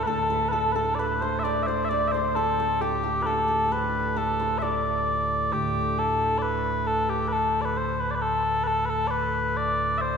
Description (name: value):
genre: medieval dance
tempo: 133 BPM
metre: 3/4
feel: straight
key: unclear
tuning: A4 = 440 Hz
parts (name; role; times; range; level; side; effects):
- mellow small bagpipes; melody; 0.0-10.2 s; G4 to E5; -24 LUFS; left 1 dB; none
- hammered dulcimer; second line; 0.0-7.1 s; G4 to D5; -32 LUFS; right 2 dB; none
- chamber organ, principal chorus; drone; 0.0-10.2 s; D2 to A2; -29 LUFS; right 2 dB; none
room: wet church reverb, RT60 2.6 s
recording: band playing live in one room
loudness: -23 LUFS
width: side -6 dB against mid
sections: 0.0-5.5 A section; 5.5-10.2 A section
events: none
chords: none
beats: | 0.07 0.53 0.98 | 1.44 1.90 2.35 | 2.80 3.26 3.71 | 4.16 4.62 5.07 | 5.52 5.97 6.42 | 6.87 7.32 7.77 | 8.22 8.67 9.12 | 9.56 10.01